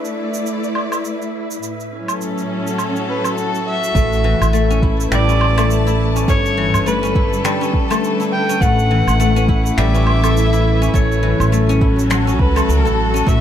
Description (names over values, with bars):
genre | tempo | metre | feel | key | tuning
organic downtempo | 103 BPM | 4/4 | swing 58% on 16ths | A mixolydian | A4 = 440 Hz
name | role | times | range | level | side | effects
rich studio string section | sustained chords | 0.0-13.4 s | A2 to D6 | -22 LUFS | left 1 dB | sidechain pumping
electronic shaker, woodblock and finger snaps | drums | 0.0-13.4 s | none | -24 LUFS | right 2 dB | none
wind-like tuned noise texture | texture | 0.0-4.0 s | E4 to E5 | -30 LUFS | left 2 dB | built-in reverb
clear kamancheh | melody | 3.1-13.4 s | A4 to G5 | -22 LUFS | equal | digital delay
guzheng | arpeggios | 4.0-13.4 s | E3 to E4 | -19 LUFS | left 3 dB | digital delay
upright bass | bass | 4.0-13.4 s | G1 to C#2 | -17 LUFS | equal | tube saturation, sidechain pumping
electronic kick drum | drums | 4.0-13.4 s | none | -17 LUFS | right 1 dB | none
room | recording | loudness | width
light reverb, studio reverb | none | -14 LUFS | side -10 dB against mid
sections
0.0-4.0 A section; 4.0-13.4 B section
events
none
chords
0.0 Asus4; 1.6 F#m7/A; 4.0 A7sus4; 6.3 Gadd9; 8.6 A7sus4; 10.9 F#m7/A